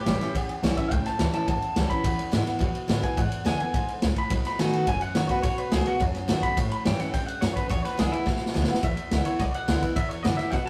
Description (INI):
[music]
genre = rockabilly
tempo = 212 BPM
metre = 4/4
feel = straight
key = E mixolydian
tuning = A4 = 441 Hz
[part]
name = electric guitar through a small old amp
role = melody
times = 0.0-10.7 s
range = E4 to B5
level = -34 LUFS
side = equal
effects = none
[part]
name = picked steel-string acoustic guitar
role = accompaniment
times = 0.0-10.7 s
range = E2 to F#4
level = -30 LUFS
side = equal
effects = none
[part]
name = upright bass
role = bass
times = 0.1-10.7 s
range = F#1 to B2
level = -33 LUFS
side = equal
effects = none
[part]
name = vintage drum kit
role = drums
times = 0.1-10.7 s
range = kick drum, ride cymbal, snare drum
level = -30 LUFS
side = equal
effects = none
[sound]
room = moderate stone room reverb, RT60 1.2 s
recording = rough rehearsal-room recording, tube saturation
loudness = -26 LUFS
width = mono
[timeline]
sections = 0.0-8.8 A section; 8.8-10.7 B section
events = clean electric guitar solo 0.0-8.8; drum fill 8.3-8.8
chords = 0.0 A7; 2.1 E7; 4.3 B7; 6.6 A7; 7.7 E7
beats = 0.07 0.35 0.64 | 0.92 1.20 1.49 1.77 | 2.05 2.33 2.62 2.90 | 3.18 3.47 3.75 4.03 | 4.32 4.60 4.88 5.17 | 5.45 5.73 6.01 6.30 | 6.58 6.86 7.14 7.43 | 7.71 7.99 8.27 8.55 | 8.84 9.12 9.40 9.69 | 9.97 10.25 10.53